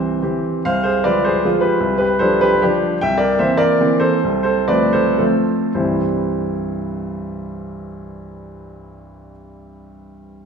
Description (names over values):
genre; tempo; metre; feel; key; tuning
classical, romantic triple-time dance for piano with dotted rhythms; 99-170 BPM; 3/4; rubato; C major; A4 = 441 Hz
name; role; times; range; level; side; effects
clear baby grand piano; solo; 0.0-10.5 s; C2 to G5; -16 LUFS; equal; none
room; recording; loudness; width
wet recital hall reverb, RT60 1.6 s; heard from further back in the room; -15 LUFS; side -6 dB against mid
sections
0.6-5.8 A section; 5.8-9.1 B section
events
slowing down 2.4-5.8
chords
0.0 C; 0.6 Fm/C; 1.8 G5/C; 3.0 C7; 4.2 F/C; 5.8 C